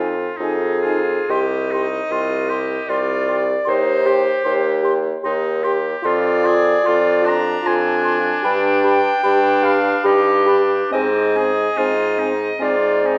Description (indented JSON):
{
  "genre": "classical, slow romantic movement for wind quintet",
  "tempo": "75 BPM",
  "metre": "3/4",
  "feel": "uneven beats, rubato",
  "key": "C minor",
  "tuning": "A4 = 445 Hz",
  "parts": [
    { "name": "hollow concert flute", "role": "melody", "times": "0.0-13.2 s", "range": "Ab5 to C6", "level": "-30 LUFS", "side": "equal", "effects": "none" },
    { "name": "bright oboe", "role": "second line", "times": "0.0-13.2 s", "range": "C4 to Ab4", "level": "-28 LUFS", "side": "equal", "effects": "none" },
    { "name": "warm French horn", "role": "accompaniment", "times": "0.0-13.2 s", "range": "C4 to G4", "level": "-27 LUFS", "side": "equal", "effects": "none" },
    { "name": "warm bassoon", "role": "bass", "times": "0.0-13.2 s", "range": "C2 to Ab2", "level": "-22 LUFS", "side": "equal", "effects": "none" },
    { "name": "warm clarinet", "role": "accompaniment", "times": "0.4-13.2 s", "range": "G4 to Bb5", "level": "-22 LUFS", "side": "equal", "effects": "none" }
  ],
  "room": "moderate scoring stage reverb, RT60 1.7 s",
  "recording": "dark, warm production",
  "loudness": "-18 LUFS",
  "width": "mono",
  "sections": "0.0-13.2 A section",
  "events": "none",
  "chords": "0.0 Fm7; 1.3 Cm; 3.7 Cm/Eb; 6.0 Dm7b5/F; 8.4 G; 10.9 Ab",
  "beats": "0.40 | 1.30 2.10 2.89 | 3.67 4.45 5.24 | 6.04 6.86 7.65 | 8.44 9.25 10.05 | 10.94 11.78 12.62"
}